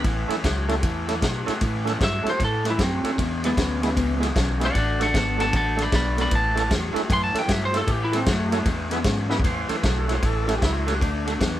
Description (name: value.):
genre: electric blues shuffle.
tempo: 153 BPM.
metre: 4/4.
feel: swing 64% on 8ths.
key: A major.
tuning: A4 = 440 Hz.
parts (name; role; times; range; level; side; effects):
tonewheel organ; accompaniment; 0.0-11.3 s; G#3 to C5; -28 LUFS; right 4 dB; overdrive, slow rotary speaker.
raw garage guitar; riff; 0.0-11.6 s; E2 to B3; -28 LUFS; left 2 dB; overdrive.
vintage muted fingered electric bass; bass; 0.0-11.6 s; G#1 to B2; -27 LUFS; equal; none.
warm soul drum kit; drums; 0.0-11.5 s; kick drum, ride cymbal, snare drum; -26 LUFS; equal; none.
lightly driven lead guitar; melody; 2.0-8.7 s; A3 to C6; -25 LUFS; equal; none.
room: moderate small room reverb, RT60 0.5 s.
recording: band playing live in one room.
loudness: -20 LUFS.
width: side -13 dB against mid.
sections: 0.0-9.4 A section; 9.4-11.6 A section.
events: lead electric guitar solo 0.0-9.4; drum fill 9.3.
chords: 0.0 A; 3.2 E; 4.7 D; 6.3 A; 8.7 E; 9.4 A; 11.0 D.